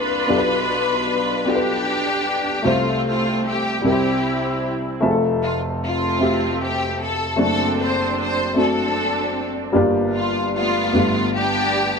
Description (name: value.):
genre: gospel.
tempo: 51 BPM (dotted quarters).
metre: 6/8.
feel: straight.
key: F major.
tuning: A4 = 442 Hz.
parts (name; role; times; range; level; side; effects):
rich studio string section; melody; 0.0-12.0 s; A3 to C5; -21 LUFS; left 1 dB; none.
warm upright piano; accompaniment; 0.0-12.0 s; F1 to E5; -21 LUFS; left 1 dB; none.
room: light reverb.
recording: none.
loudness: -18 LUFS.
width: side -5 dB against mid.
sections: 0.0-12.0 A section.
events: none.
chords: 0.3 G7/B; 2.6 F/C; 3.8 C; 5.0 Fmaj7; 7.4 D7/F#; 9.8 Gm7; 10.9 G9.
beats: | 0.28 1.46 | 2.65 3.83 | 5.01 6.20 | 7.38 8.57 | 9.75 10.94.